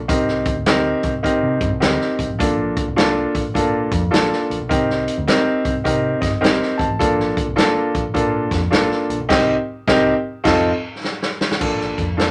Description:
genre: uptempo 1960s-style soul.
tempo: 104 BPM.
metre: 4/4.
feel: swing 64% on 8ths.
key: Bb major.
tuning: A4 = 439 Hz.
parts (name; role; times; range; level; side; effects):
picked electric bass; bass; 0.0-12.3 s; F1 to C3; -29 LUFS; equal; none.
warm baby grand piano; accompaniment; 0.1-12.3 s; Bb3 to A5; -20 LUFS; equal; none.
swinging big-band drum kit; drums; 0.1-12.3 s; crash cymbal, hi-hat, kick drum, snare drum; -24 LUFS; equal; none.
room: moderate club reverb, RT60 0.6 s.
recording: none.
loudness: -19 LUFS.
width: mono.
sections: 0.0-11.6 A section.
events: grand piano fill 5.8-7.0; band accent 9.3-11.6; drum fill 11.0-11.6.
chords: 0.1 Cm7; 2.4 Bbmaj7; 4.7 Cm7; 7.0 Bbmaj7; 9.3 Cm7; 10.5 F7; 11.6 Bbmaj7.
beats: | 0.09 0.66 1.24 1.82 | 2.39 2.97 3.55 4.12 | 4.70 5.28 5.85 6.43 | 7.00 7.58 8.15 8.73 | 9.30 9.88 10.46 11.03 | 11.61 12.19.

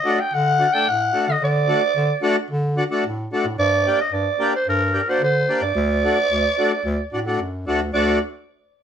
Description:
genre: klezmer.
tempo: 110 BPM.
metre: 4/4.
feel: straight.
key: D phrygian dominant.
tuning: A4 = 438 Hz.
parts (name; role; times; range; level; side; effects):
growling clarinet; melody; 0.0-8.2 s; Bb4 to G5; -19 LUFS; right 2 dB; none.
accordion; accompaniment; 0.1-8.2 s; A3 to A4; -22 LUFS; left 2 dB; none.
mellow bass clarinet; bass; 0.3-8.2 s; D2 to D3; -24 LUFS; equal; none.
room: moderate studio reverb, RT60 0.6 s.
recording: none.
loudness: -18 LUFS.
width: side -8 dB against mid.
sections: 0.0-7.9 A section.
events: none.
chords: 0.0 D; 3.6 Gm; 5.8 D.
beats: 0.32 0.86 | 1.41 1.95 2.50 3.04 | 3.59 4.13 4.67 5.22 | 5.76 6.31 6.85 7.39 | 7.94.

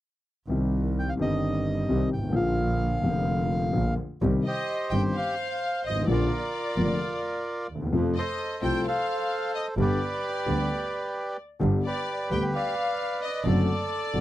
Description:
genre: tango.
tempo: 130 BPM.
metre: 4/4.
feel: rubato.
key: unclear.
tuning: A4 = 440 Hz.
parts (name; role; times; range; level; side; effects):
warm concert grand piano; accompaniment; 0.5-14.2 s; F1 to G4; -27 LUFS; left 2 dB; none.
clear double bass; bass; 0.5-14.2 s; F1 to F2; -28 LUFS; right 2 dB; none.
bandoneon; melody; 1.0-14.2 s; F4 to G5; -30 LUFS; right 1 dB; none.
clear studio violin section; second line; 4.4-14.2 s; D5 to G5; -34 LUFS; left 5 dB; none.
room: light reverb.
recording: dry, close 1970s-style studio recording.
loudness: -24 LUFS.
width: side -14 dB against mid.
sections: 0.5-4.2 A section; 4.2-14.2 B section.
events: none.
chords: 0.5 Cm; 2.4 Bb; 4.2 Cm; 6.1 Bb; 7.9 F; 9.8 G; 13.5 D7/F#.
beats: | 0.50 0.96 1.43 1.89 | 2.36 2.82 3.29 3.75 | 4.22 4.68 5.15 5.61 | 6.07 6.54 7.00 7.46 | 7.92 8.39 8.85 9.31 | 9.77 10.23 10.69 11.15 | 11.62 12.08 12.54 13.00 | 13.46 13.92.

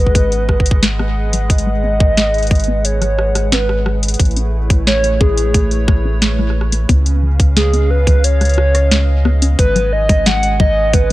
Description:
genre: IDM.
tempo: 89 BPM.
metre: 4/4.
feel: straight.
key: G# phrygian.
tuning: A4 = 440 Hz.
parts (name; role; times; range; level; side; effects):
warbly nostalgic lead; melody; 0.0-11.1 s; G#4 to F#5; -18 LUFS; equal; chorus, analog delay.
hollow soft pad; sustained chords; 0.0-11.1 s; C#3 to G#5; -24 LUFS; right 1 dB; chorus.
warbly dusty pluck; arpeggios; 0.0-11.1 s; E#3 to G#4; -23 LUFS; left 4 dB; chorus, cassette tape, analog delay.
round analog bass; bass; 0.0-11.1 s; G#1 to C#2; -16 LUFS; equal; none.
electronic kick drum; drums; 0.1-11.1 s; none; -12 LUFS; equal; none.
booming analog drum machine; drums; 0.2-11.1 s; hi-hat, rim click, snare drum; -19 LUFS; equal; none.
room: little or no reverb.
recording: dry, gritty hardware recording, cassette tape.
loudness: -12 LUFS.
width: side -17 dB against mid.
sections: 0.0-11.1 A section.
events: filter sweep on synth arpeggio sound 0.0-11.1.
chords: 0.0 G#m7; 4.2 Amaj7; 6.9 C#7; 9.6 G#m7.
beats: 0.15 0.82 | 1.50 2.17 2.85 3.52 | 4.20 4.87 5.54 6.22 | 6.89 7.57 8.24 8.91 | 9.59 10.26 10.94.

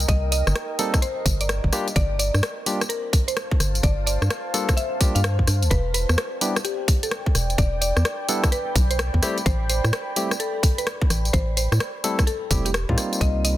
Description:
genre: UK garage, two-step garage.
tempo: 128 BPM.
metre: 4/4.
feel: swing 64% on 16ths.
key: E minor.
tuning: A4 = 441 Hz.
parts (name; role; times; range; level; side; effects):
organ-like FM bass; bass; 0.0-13.6 s; E1 to A2; -22 LUFS; equal; none.
garage drum kit; drums; 0.0-13.6 s; hi-hat, rim click, tambourine; -26 LUFS; left 1 dB; studio reverb, soft clipping on snare.
deep dark ambient pad; texture; 0.0-13.6 s; Bb4 to B5; -32 LUFS; equal; chorus, built-in reverb, sidechain pumping.
mallet-like synth pluck; melody; 0.1-13.6 s; G4 to F5; -30 LUFS; equal; chorus, tape echo.
electronic kick drum; drums; 0.1-13.3 s; none; -21 LUFS; equal; studio reverb.
barky tine electric piano; stabs; 0.8-13.6 s; G3 to A4; -27 LUFS; equal; medium stereo tremolo, tape echo.
room: little or no reverb.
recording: dense, heavily limited modern master.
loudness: -20 LUFS.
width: side -14 dB against mid.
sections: 0.0-13.6 A section.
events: none.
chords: 0.0 Cm7; 1.7 Gm7; 5.7 Em7; 9.2 Am7; 13.0 Cm7.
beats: | 0.09 0.55 1.02 1.49 | 1.96 2.43 2.90 3.37 | 3.83 4.30 4.77 5.24 | 5.71 6.18 6.65 7.12 | 7.58 8.05 8.52 8.99 | 9.46 9.93 10.40 10.87 | 11.34 11.80 12.27 12.74 | 13.21.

